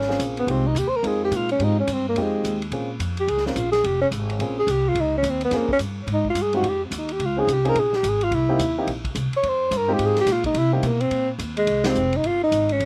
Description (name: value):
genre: jazz, small-group swing and bop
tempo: 214 BPM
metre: 4/4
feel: swing 62% on 8ths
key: F minor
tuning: A4 = 440 Hz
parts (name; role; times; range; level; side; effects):
- breathy tenor saxophone; melody; 0.0-12.9 s; G3 to Db5; -24 LUFS; equal; none
- upright bass; bass; 0.0-12.9 s; F1 to C3; -29 LUFS; equal; none
- vintage drum kit; drums; 0.0-12.9 s; hi-hat, kick drum, ride cymbal, snare drum; -36 LUFS; equal; none
- dark baby grand piano; accompaniment; 0.1-12.0 s; Ab3 to Bb4; -30 LUFS; equal; none
room: little or no reverb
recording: recorded outdoors, with no room sound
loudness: -22 LUFS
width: mono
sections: 0.0-11.7 A section; 11.7-12.9 B section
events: tenor saxophone solo 0.0-11.7; band accent 11.8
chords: 0.5 Fm7; 2.7 Bbm7; 6.1 Fm7; 7.2 Dbmaj7; 8.3 C7#9; 9.4 Fm7; 10.6 Cm7; 11.7 Fm7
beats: 0.20 | 0.48 0.76 1.04 1.32 | 1.60 1.88 2.16 2.44 | 2.72 3.00 3.28 3.56 | 3.84 4.12 4.40 4.68 | 4.96 5.24 5.52 5.80 | 6.08 6.36 6.64 6.92 | 7.20 7.48 7.76 8.04 | 8.32 8.60 8.88 9.16 | 9.44 9.72 10.00 10.28 | 10.56 10.84 11.12 11.40 | 11.68 11.96 12.24 12.53 | 12.81